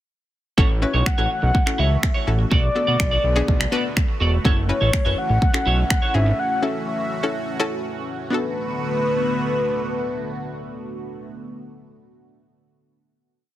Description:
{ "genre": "dance-pop", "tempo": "124 BPM", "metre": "4/4", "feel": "straight", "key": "B minor", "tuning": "A4 = 440 Hz", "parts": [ { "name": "analog pluck", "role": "accompaniment", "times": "0.6-11.3 s", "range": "B3 to B4", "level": "-26 LUFS", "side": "left 3 dB", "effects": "chorus, sidechain pumping" }, { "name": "lush unison pad", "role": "sustained chords", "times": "0.6-11.3 s", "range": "D3 to F#4", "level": "-29 LUFS", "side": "right 1 dB", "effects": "chorus, phaser, sidechain pumping" }, { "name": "clean electric guitar", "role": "riff", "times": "0.6-6.3 s", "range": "E4 to D5", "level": "-26 LUFS", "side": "right 4 dB", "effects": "lush chorus" }, { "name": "fat analog bass", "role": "bass", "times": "0.6-6.3 s", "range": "E1 to B2", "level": "-20 LUFS", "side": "equal", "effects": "sidechain pumping" }, { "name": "pop drum kit", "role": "drums", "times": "0.6-6.0 s", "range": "finger snaps, kick drum", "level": "-19 LUFS", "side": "equal", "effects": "overdrive, soft clipping on snare" }, { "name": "mellow horn-like synth lead", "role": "melody", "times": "0.8-11.3 s", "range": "B4 to F#5", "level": "-25 LUFS", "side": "left 2 dB", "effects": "chorus, tape echo" } ], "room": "light reverb", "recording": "dense, heavily limited modern master", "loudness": "-18 LUFS", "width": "side -13 dB against mid", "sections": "0.6-8.3 verse; 8.3-12.2 final chord", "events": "none", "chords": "0.6 A6; 2.5 Bm7; 4.5 F#m7; 6.4 A6; 8.3 Bm7" }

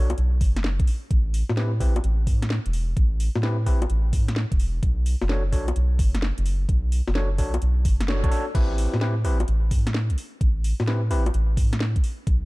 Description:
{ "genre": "UK garage, two-step garage", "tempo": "129 BPM", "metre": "4/4", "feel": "swing 66% on 16ths", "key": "A dorian", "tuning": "A4 = 440 Hz", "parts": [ { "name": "overdriven tine electric piano", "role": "stabs", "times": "0.0-11.2 s", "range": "C4 to C#5", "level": "-32 LUFS", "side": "left 1 dB", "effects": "ping-pong delay" }, { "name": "soft dub sub bass", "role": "bass", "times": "0.0-12.4 s", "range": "E1 to A2", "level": "-23 LUFS", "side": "equal", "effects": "tube saturation, sidechain pumping" }, { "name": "garage drum kit", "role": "drums", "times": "0.1-12.4 s", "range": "bongos, crash cymbal, hi-hat, snare drum", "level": "-31 LUFS", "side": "left 1 dB", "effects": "none" }, { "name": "electronic kick drum", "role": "drums", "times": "0.4-12.4 s", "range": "none", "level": "-22 LUFS", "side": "equal", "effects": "none" } ], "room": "little or no reverb", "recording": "dark, warm production", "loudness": "-20 LUFS", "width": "side -22 dB against mid", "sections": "0.0-8.5 A section; 8.5-12.4 A section", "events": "drop 0.0-8.5, 8.5-12.4; band accent 8.1", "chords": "0.0 B5; 1.1 Am9; 4.8 Bm9; 8.5 Am9" }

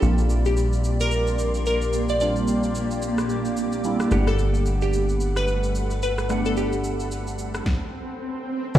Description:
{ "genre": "amapiano", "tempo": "110 BPM", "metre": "4/4", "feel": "swing 58% on 16ths", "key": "unclear", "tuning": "A4 = 441 Hz", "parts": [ { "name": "glassy wavetable pluck", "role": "melody", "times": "0.0-7.6 s", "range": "G4 to D5", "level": "-27 LUFS", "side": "equal", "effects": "chorus, ping-pong delay" }, { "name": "glassy digital keys", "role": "accompaniment", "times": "0.0-7.7 s", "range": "G3 to F#5", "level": "-28 LUFS", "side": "right 1 dB", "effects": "chorus" }, { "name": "granular cloud pad", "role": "sustained chords", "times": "0.0-8.8 s", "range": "Bb3 to D6", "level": "-29 LUFS", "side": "equal", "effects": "built-in reverb, sidechain pumping" }, { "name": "plucky analog bass", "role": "bass", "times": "0.0-7.6 s", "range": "G1 to Bb1", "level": "-24 LUFS", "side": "equal", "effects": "none" }, { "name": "smooth R&B drum kit", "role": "drums", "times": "0.0-8.8 s", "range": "crash cymbal, kick drum, rim click, shaker, snare drum", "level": "-33 LUFS", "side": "equal", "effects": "none" }, { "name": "swell", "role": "sound effects", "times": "7.6-8.8 s", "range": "none", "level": "-33 LUFS", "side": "right 1 dB", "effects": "none" }, { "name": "hollow log drum bass", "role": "bass", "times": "8.8 s", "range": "E2", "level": "-10 LUFS", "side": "equal", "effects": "none" } ], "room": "light reverb", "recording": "played on a big sound system in a bare room, stone room reverb", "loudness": "-21 LUFS", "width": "side -12 dB against mid", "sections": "0.0-8.8 A section", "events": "swell 7.6-8.8", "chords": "0.0 Bb69; 4.1 Gmaj9" }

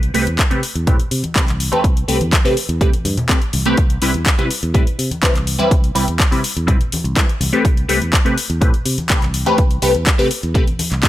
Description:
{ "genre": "filtered disco house", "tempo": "124 BPM", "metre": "4/4", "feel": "straight", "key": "A minor", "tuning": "A4 = 440 Hz", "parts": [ { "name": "fingered electric bass", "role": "bass", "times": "0.0-11.0 s", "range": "C2 to C3", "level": "-21 LUFS", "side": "equal", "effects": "sidechain pumping, low-pass filter" }, { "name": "house drum kit", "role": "drums", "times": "0.0-11.1 s", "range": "handclaps, hi-hat", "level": "-20 LUFS", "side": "left 1 dB", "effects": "overdrive, sidechain pumping on hats" }, { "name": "tube shaker and congas", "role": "percussion", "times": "0.0-11.1 s", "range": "none", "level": "-27 LUFS", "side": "left 1 dB", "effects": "sidechain pumping on perc, low-pass filter on perc" }, { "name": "funky polysynth comp", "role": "accompaniment", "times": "0.1-11.1 s", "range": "G3 to B4", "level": "-19 LUFS", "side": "equal", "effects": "chorus, phaser, sidechain pumping, low-pass filter" }, { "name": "electronic kick drum", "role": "drums", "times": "0.4-11.1 s", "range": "none", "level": "-15 LUFS", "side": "equal", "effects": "overdrive" } ], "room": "little or no reverb", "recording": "none", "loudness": "-14 LUFS", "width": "side -14 dB against mid", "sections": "0.0-11.1 A section", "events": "none", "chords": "0.0 Am9/C" }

